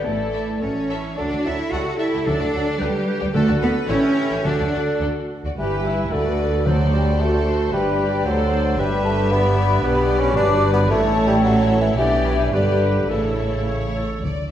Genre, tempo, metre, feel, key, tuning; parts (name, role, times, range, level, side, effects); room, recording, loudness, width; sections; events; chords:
quick classical-period movement for symphony orchestra; 104-114 BPM; 2/4; rubato; D major, G major from 5.6 s; A4 = 440 Hz
dark clarinet; second line; 0.0-13.9 s; E4 to D5; -30 LUFS; left 1 dB
mellow hollow large flute ensemble; second line; 0.0-13.9 s; G4 to D6; -28 LUFS; left 2 dB
warm oboe; second line; 0.0-14.2 s; A4 to A5; -32 LUFS; right 1 dB
clear bassoon; accompaniment; 0.0-13.9 s; C#3 to D4; -25 LUFS; right 1 dB
warm studio viola section; accompaniment; 0.0-14.0 s; E4 to A4; -31 LUFS; right 1 dB
mellow French horn section; sustained chords; 0.0-14.0 s; C#4 to D5; -27 LUFS; left 2 dB
rich studio cello section; bass; 0.0-14.5 s; D2 to F#4; -23 LUFS; right 1 dB
clear studio violin section; melody; 0.1-14.0 s; G4 to F#5; -33 LUFS; left 3 dB
rich studio double bass section; bass; 0.1-14.5 s; G1 to D2; -25 LUFS; right 1 dB
rich studio violin section; second line; 0.3-14.5 s; D4 to F#5; -32 LUFS; left 3 dB
timpani; percussion; 2.3-7.4, 14.2-14.5 s; D3; -27 LUFS; left 1 dB
wet recital hall reverb, RT60 1.4 s; dark, warm production; -17 LUFS; side -10 dB against mid
0.0-5.6 A section; 5.6-14.2 B section
0.1 Asus4; 0.6 A; 1.2 D; 1.7 A7(no3); 2.3 D; 2.8 G/D; 3.3 D; 3.9 A7; 4.4 D; 5.6 G; 6.1 D; 6.7 D7; 7.7 G; 8.3 D7; 8.8 G; 9.8 G/B; 10.4 G; 10.9 A; 12.0 G/B; 12.5 G; 13.1 A